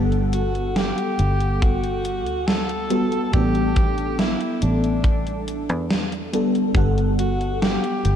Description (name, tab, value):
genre	vaporwave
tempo	70 BPM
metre	4/4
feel	straight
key	G major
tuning	A4 = 439 Hz
part	FM electric piano with soft pad layer	accompaniment	0.0-8.2 s	G3 to F#5	-24 LUFS	left 1 dB	analog chorus, ping-pong delay
part	fingered electric bass	bass	0.0-8.2 s	G1 to E2	-23 LUFS	equal	none
part	gated 80s digital drum machine	drums	0.1-8.2 s	hi-hat, snare drum	-25 LUFS	right 1 dB	gated reverb, gated reverb snare, overdrive
part	clear alto saxophone	melody	0.3-8.2 s	D4 to A4	-27 LUFS	equal	tape echo
part	kick drum	drums	1.6-6.9 s	none	-20 LUFS	equal	none
room	moderate lush hall reverb, RT60 2.7 s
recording	dreamy mix soaked in reverb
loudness	-19 LUFS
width	side -9 dB against mid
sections	0.0-8.2 A section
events	none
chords	0.0 Gmaj9; 3.3 A9sus4; 6.8 Gmaj9